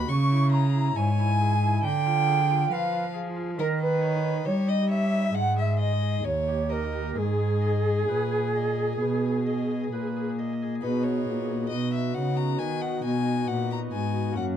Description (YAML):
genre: classical, baroque-style sonata movement with continuo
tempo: 68 BPM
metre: 4/4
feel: rubato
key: G# minor, B major from 10.8 s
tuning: A4 = 440 Hz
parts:
  - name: rich violin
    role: melody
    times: 0.0-14.4 s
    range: G#4 to C#6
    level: -34 LUFS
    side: left 8 dB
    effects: none
  - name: pipe organ, cornet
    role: accompaniment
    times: 0.0-14.6 s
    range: D#2 to D#5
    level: -31 LUFS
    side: equal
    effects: none
  - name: dark cello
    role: bass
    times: 0.0-14.6 s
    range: D#2 to G3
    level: -26 LUFS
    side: equal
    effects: none
  - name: mellow hollow silver concert flute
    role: second line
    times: 0.1-14.6 s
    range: F#4 to C#6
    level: -29 LUFS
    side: right 4 dB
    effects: none
room: light reverb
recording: dark, warm production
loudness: -23 LUFS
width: side -9 dB against mid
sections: 0.0-10.8 A section; 10.8-14.6 A section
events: none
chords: 0.1 C#m; 1.8 Ddim7; 3.6 D#7; 5.3 G#5; 6.2 D#7; 7.2 G#m; 10.8 B